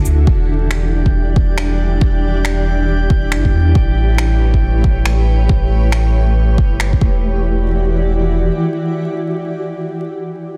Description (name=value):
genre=future garage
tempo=138 BPM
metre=4/4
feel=swing 61% on 16ths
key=E dorian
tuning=A4 = 440 Hz
part: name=granular cloud pad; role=sustained chords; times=0.0-10.0 s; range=D3 to D5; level=-23 LUFS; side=equal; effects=built-in reverb, sidechain pumping
part: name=warm sub bass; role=bass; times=0.0-8.5 s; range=D1 to E2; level=-17 LUFS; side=equal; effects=tube saturation, sidechain pumping
part: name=electronic cabasa and finger snaps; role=drums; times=0.1-6.9 s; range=none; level=-26 LUFS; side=equal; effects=overdrive, studio ambience, soft clipping on snare
part: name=electronic kick drum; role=drums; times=0.3-7.1 s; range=none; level=-17 LUFS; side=equal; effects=overdrive, studio ambience
part: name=drifting glass-harmonics texture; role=texture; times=0.6-7.2 s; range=G3 to G5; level=-30 LUFS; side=equal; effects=chorus, built-in reverb
room=light reverb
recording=dense, heavily limited modern master, vinyl crackle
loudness=-15 LUFS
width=mono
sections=0.3-7.2 A section; 7.2-10.6 B section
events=none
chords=0.3 Em7; 3.8 A7; 7.0 Em7